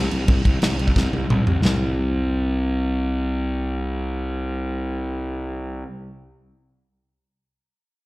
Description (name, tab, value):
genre	heavy metal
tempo	177 BPM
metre	4/4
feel	straight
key	unclear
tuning	A4 = 440 Hz
part	fuzz fingered electric bass	bass	0.0-5.8 s	C2	-22 LUFS	equal	overdrive
part	modern studio drum kit	drums	0.1-1.7 s	crash cymbal, kick drum, snare drum, toms	-19 LUFS	equal	none
room	little or no reverb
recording	live gig heard through the venue's PA, recital hall reverb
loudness	-20 LUFS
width	side -20 dB against mid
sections	0.0-1.6 A section; 1.6-4.4 B section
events	drum fill 1.0-1.6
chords	none